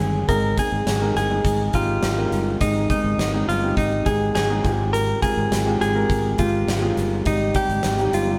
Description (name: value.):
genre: piano-driven pop.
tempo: 103 BPM.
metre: 4/4.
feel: straight.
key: Ab major.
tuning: A4 = 437 Hz.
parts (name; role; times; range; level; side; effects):
direct-recorded clean electric guitar; melody; 0.0-8.4 s; Eb4 to Bb4; -26 LUFS; equal; none.
warm grand piano; accompaniment; 0.0-8.4 s; Ab2 to Bb4; -27 LUFS; equal; none.
fingered electric bass; bass; 0.0-8.4 s; G1 to Ab1; -27 LUFS; equal; none.
huge arena drum kit; drums; 0.0-8.3 s; hi-hat, kick drum, snare drum; -28 LUFS; equal; none.
room: wet stone room reverb, RT60 1.3 s.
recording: band playing live in one room.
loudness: -21 LUFS.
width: mono.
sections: 0.3-8.4 A section.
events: none.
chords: 0.3 Ab; 4.6 Fmadd9/Ab; 7.3 Cm.